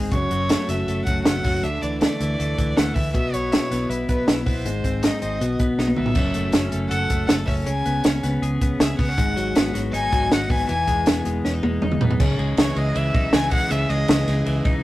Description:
jangly indie pop; 159 BPM; 4/4; straight; C# minor; A4 = 439 Hz
twelve-string electric guitar; arpeggios; 0.0-14.8 s; F#2 to A4; -25 LUFS; left 1 dB
vintage muted fingered electric bass; bass; 0.0-14.8 s; E1 to D2; -26 LUFS; right 1 dB
warm violin; melody; 0.1-14.6 s; B4 to G#5; -27 LUFS; left 1 dB
compact cocktail drum kit; drums; 0.1-14.7 s; crash cymbal, hi-hat, kick drum, ride cymbal, snare drum, toms; -21 LUFS; equal
light reverb; rough rehearsal-room recording; -19 LUFS; side -16 dB against mid
0.0-6.2 A section; 6.2-12.2 B section; 12.2-14.8 C section
drum fill 5.8-6.2, 11.4-12.2
0.1 F#m; 1.6 Dsus2; 3.1 Bsus4; 4.7 G#; 5.4 B; 6.2 F#m7; 7.7 C#5; 9.2 G#m7; 10.7 Emaj7; 12.2 C#madd9
| 0.12 0.50 0.88 1.25 | 1.63 2.01 2.39 2.77 | 3.14 3.52 3.90 4.28 | 4.65 5.03 5.41 5.79 | 6.16 6.54 6.92 7.29 | 7.67 8.05 8.43 8.80 | 9.18 9.56 9.93 10.31 | 10.69 11.06 11.44 11.82 | 12.20 12.57 12.95 13.33 | 13.71 14.08 14.46

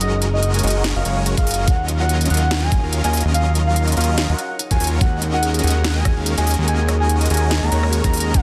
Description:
future bass; 144 BPM; 4/4; swing 55% on 16ths, half-time; A4 = 440 Hz
soft octave-layered synth lead; melody; 0.0-8.4 s; Eb5 to Bb5; -27 LUFS; equal; chorus, sidechain pumping, tape echo
concert harp; arpeggios; 0.0-8.4 s; Eb4 to Gb5; -33 LUFS; equal; sidechain pumping, tape echo
supersaw chords; riff; 0.0-8.4 s; Gb3 to F5; -28 LUFS; equal; phaser, sidechain pumping
fat analog bass; bass; 0.0-8.4 s; Gb1 to Eb2; -21 LUFS; equal; sidechain pumping
trap drum kit; drums; 0.0-8.4 s; hi-hat, rim click, snare drum; -26 LUFS; equal; studio reverb
electronic kick drum; drums; 1.4-8.4 s; -20 LUFS; equal; studio reverb
light reverb; dense, heavily limited modern master; -18 LUFS; mono
0.0-8.4 A section
0.0 Gb69; 1.7 Ebm9
| 0.01 0.43 0.84 1.26 | 1.68 2.09 2.51 2.93 | 3.34 3.76 4.18 4.59 | 5.01 5.43 5.84 6.26 | 6.68 7.09 7.51 7.93 | 8.34

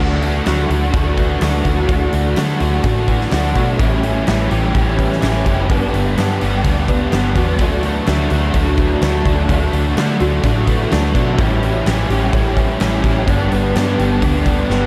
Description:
rock, shoegaze and dream pop; 126 BPM; 4/4; straight; D major; A4 = 439 Hz
fingerpicked twelve-string acoustic guitar; arpeggios; 0.0-14.9 s; E3 to G4; -27 LUFS; equal; subtle chorus, tape echo
biting overdriven guitar; riff; 0.0-14.9 s; G2 to F#4; -26 LUFS; equal; reverse reverb
overdriven electric guitar; riff; 0.0-14.9 s; G2 to G4; -25 LUFS; equal; ensemble chorus
overdriven electric guitar; riff; 0.0-14.9 s; G2 to F#4; -25 LUFS; equal; subtle chorus
vintage muted fingered electric bass; bass; 0.0-14.9 s; F#1 to D3; -21 LUFS; equal
huge arena drum kit; drums; 0.2-14.8 s; hi-hat, kick drum, snare drum; -22 LUFS; equal
moderate plate reverb, RT60 2.1 s; dreamy mix soaked in reverb; -16 LUFS; mono
0.0-14.9 A section
drum fill 14.7
0.0 Dadd9; 3.8 A7; 5.7 Gmaj7; 7.6 Dadd9; 11.4 A7; 13.3 G
0.46 0.94 1.42 | 1.89 2.37 2.85 3.32 | 3.80 4.27 4.75 5.22 | 5.70 6.17 6.65 7.12 | 7.60 8.07 8.55 9.02 | 9.49 9.97 10.44 10.91 | 11.39 11.86 12.33 12.81 | 13.28 13.75 14.22 14.70

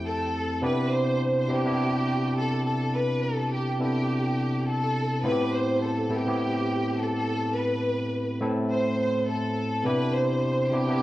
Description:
soul; 104 BPM; 4/4; swing 58% on 16ths; A4 = 437 Hz
rich symphonic violin section; melody; 0.0-11.0 s; G4 to G5; -28 LUFS; equal; cassette tape, plate reverb, analog delay
barky tine electric piano; accompaniment; 0.0-11.0 s; F2 to A4; -26 LUFS; equal; cassette tape
moderate small room reverb, RT60 0.5 s; home recording on cassette, small room ambience; -24 LUFS; side -15 dB against mid
0.6-11.0 A section
0.0 Fmaj9; 0.6 Cmaj9; 5.2 Am7; 9.8 Cmaj9
0.06 | 0.63 1.21 1.79 2.36 | 2.94 3.52 4.09 4.67 | 5.24 5.82 6.39 6.97 | 7.55 8.12 8.70 9.27 | 9.85 10.43 11.00

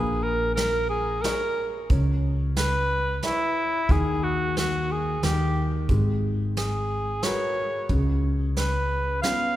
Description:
acoustic folk-pop ballad; 90 BPM; 3/4; straight; A4 = 439 Hz
mellow cor anglais; melody; 0.0-9.6 s; E4 to E#5; -26 LUFS; equal
clear upright piano; accompaniment; 0.0-9.6 s; C#3 to E5; -32 LUFS; left 2 dB
upright bass; bass; 0.0-9.2 s; G#1 to D#2; -26 LUFS; equal
soft brush drum kit; drums; 0.6-9.4 s; hi-hat, kick drum, snare drum; -28 LUFS; right 1 dB
moderate church reverb, RT60 2.9 s; recorded in a church or concert hall; -22 LUFS; side -14 dB against mid
0.0-9.6 A section
0.0 A#m7; 1.9 C#m7; 3.9 D#; 5.9 G#m9; 7.9 C#7
0.56 1.23 | 1.90 2.56 3.23 | 3.89 4.56 5.23 | 5.89 6.56 7.23 | 7.90 8.56 9.23

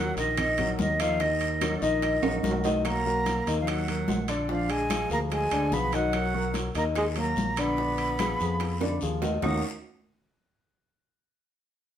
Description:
Afro-Cuban jazz; 146 BPM; 4/4; straight; Eb minor; A4 = 439 Hz
breathy concert flute; melody; 0.0-9.6 s; D5 to Eb6; -30 LUFS; right 1 dB
breathy tenor saxophone; second line; 0.0-9.6 s; D3 to Eb4; -33 LUFS; right 3 dB
warm concert grand piano; accompaniment; 0.0-9.6 s; D3 to Eb5; -30 LUFS; left 3 dB
modern bright fingered electric bass; bass; 0.0-9.6 s; Bb1 to F2; -32 LUFS; equal
congas; percussion; 0.2-9.5 s; -34 LUFS; left 2 dB
guiro; percussion; 0.2-9.5 s; -43 LUFS; left 3 dB
timbales; percussion; 0.2-9.5 s; -34 LUFS; right 6 dB
bongos; percussion; 0.4-9.5 s; -39 LUFS; left 4 dB
claves; percussion; 0.4-9.5 s; -43 LUFS; right 2 dB
wet studio reverb, RT60 0.6 s; band playing live in one room; -24 LUFS; side -10 dB against mid
0.0-2.8 A section; 2.8-9.4 B section; 9.4-11.1 C section
drum fill 2.2-2.8, 8.8-9.4
0.0 Ebm; 2.8 Bmaj7; 4.5 Bb7b9; 6.1 Bmaj7; 7.8 Bb7b9; 9.4 Ebm9
0.38 0.79 | 1.20 1.61 2.02 2.43 | 2.84 3.25 3.66 4.07 | 4.49 4.90 5.31 5.72 | 6.13 6.54 6.96 7.37 | 7.78 8.19 8.60 9.01 | 9.43

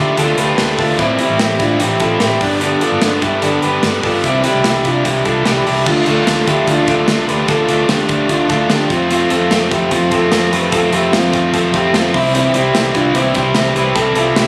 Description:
jangly indie pop; 148 BPM; 4/4; straight; A4 = 441 Hz
cranked stack guitar; accompaniment; 0.0-14.5 s; G2 to F4; -18 LUFS; equal; overdrive
electric guitar through a small old amp; arpeggios; 0.0-14.5 s; C4 to B4; -19 LUFS; equal; tape echo
vintage muted fingered electric bass; bass; 0.0-14.5 s; G1 to D3; -24 LUFS; equal
modern studio drum kit; drums; 0.2-14.5 s; crash cymbal, hi-hat, kick drum, snare drum; -22 LUFS; equal
reed electric piano; accompaniment; 12.3-14.5 s; E4 to C5; -23 LUFS; equal; medium tremolo
light reverb; recorded on a phone in the room, studio ambience, compression; -14 LUFS; mono
0.0-5.9 A section; 5.9-14.5 B section
0.0 Dm; 1.0 Am7; 2.4 G; 4.2 Cadd9; 5.9 Dm; 8.9 F; 12.1 C
0.18 0.58 | 0.99 1.40 1.80 2.21 | 2.62 3.02 3.43 3.83 | 4.24 4.65 5.05 5.46 | 5.86 6.27 6.67 7.08 | 7.49 7.89 8.30 8.70 | 9.11 9.51 9.92 10.32 | 10.73 11.13 11.53 11.94 | 12.34 12.74 13.15 13.55 | 13.96 14.36

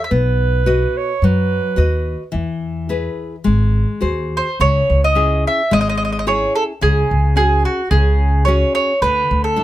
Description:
italian folk, Italian serenade; 108 BPM; 4/4; swing 53% on 8ths; C# minor from 4.6 s; A4 = 441 Hz
mandolin; melody; 0.0-0.1, 4.4-9.6 s; F#4 to E5; -16 LUFS; right 2 dB
mellow clarinet; second line; 0.1-2.4 s; B4 to C#5; -21 LUFS; right 9 dB
nylon-string guitar; accompaniment; 0.1-9.6 s; C#3 to D#5; -22 LUFS; left 3 dB
upright bass; bass; 0.1-9.6 s; G#1 to F#2; -17 LUFS; equal
light reverb; close, detailed microphones, faint mains hum; -14 LUFS; side -14 dB against mid
0.0-4.6 A section; 4.6-9.6 B section
0.1 B; 2.3 E; 3.5 G#7; 4.6 C#m; 6.8 F#sus2/C#; 9.0 D5
| 0.12 0.67 1.23 1.79 | 2.35 2.91 3.47 4.03 | 4.60 5.16 5.72 6.27 | 6.83 7.38 7.92 8.47 | 9.03 9.57

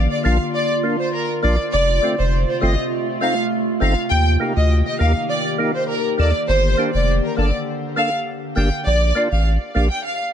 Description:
dancehall; 101 BPM; 4/4; straight; A4 = 440 Hz
glassy FM pad; sustained chords; 0.0-8.8 s; C3 to G4; -25 LUFS; equal; ensemble chorus, built-in reverb
saturated sub bass; bass; 0.0-9.9 s; F1 to Eb2; -17 LUFS; equal
warm symphonic violin section; melody; 0.1-10.2 s; Bb4 to G5; -21 LUFS; equal; tape echo
percussive tonewheel organ; accompaniment; 0.2-9.9 s; A3 to A4; -25 LUFS; right 1 dB; chorus vibrato, slow rotary speaker, tape echo
little or no reverb; echo-heavy mix, nothing above 10.5 kHz; -16 LUFS; side -9 dB against mid
0.0-8.9 A section; 8.9-10.3 B section
0.0 Bb; 1.7 F; 4.1 Eb; 6.5 Gm; 8.9 Bb
0.55 1.14 | 1.73 2.33 2.92 3.52 | 4.11 4.70 5.30 5.89 | 6.49 7.08 7.67 8.27 | 8.86 9.46 10.05

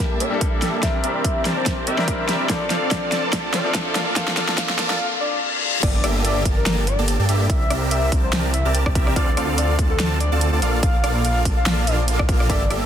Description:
future bass; 144 BPM; 4/4; swing 55% on 16ths, half-time; G dorian; A4 = 442 Hz
soft octave-layered synth lead; melody; 0.0-12.7 s; A4 to F5; -27 LUFS; left 2 dB; chorus, sidechain pumping, ping-pong delay
bright concert grand piano; accompaniment; 0.0-5.9 s; F3 to Bb4; -28 LUFS; left 3 dB; sidechain pumping, digital delay
bright studio string section; sustained chords; 0.0-5.0 s; E3 to A5; -34 LUFS; left 2 dB
dense compressed supersaw; riff; 0.0-12.9 s; Bb3 to A5; -24 LUFS; right 1 dB; sidechain pumping, low-pass filter
big-room dance drum kit; drums; 0.0-12.8 s; crash cymbal, hi-hat, rim click, snare drum; -25 LUFS; equal; overdrive
electronic kick drum; drums; 0.0-12.6 s; -22 LUFS; equal; overdrive
riser, reverse cymbal and impact; sound effects; 2.9-7.5 s; -28 LUFS; left 2 dB
wide detuned saw bass; bass; 5.8-12.9 s; G1 to G2; -21 LUFS; equal; chorus, tube saturation, sidechain pumping
light reverb; dense, heavily limited modern master, high-pass filter; -18 LUFS; side -9 dB against mid
0.0-5.8 A section; 5.8-12.9 B section
build-up 0.0-5.8; drum fill 0.0-5.0; filter sweep on supersaw synth 0.0-5.8; filter sweep on soft synth lead 0.0-5.8; filter sweep 0.0-5.8; reverse cymbal 5.0-5.8; drop 5.8-12.9; impact 5.8-7.5
0.0 Gm69; 0.8 C9; 2.5 Dm7; 4.0 Bbmaj7; 5.8 Gm69; 7.5 C9; 9.2 Dm7; 10.6 Bbmaj7
0.00 0.41 | 0.83 1.25 1.66 2.08 | 2.50 2.91 3.33 3.75 | 4.16 4.58 5.00 5.41 | 5.83 6.25 6.66 7.08 | 7.50 7.91 8.33 8.75 | 9.16 9.58 10.00 10.41 | 10.83 11.25 11.66 12.08 | 12.50

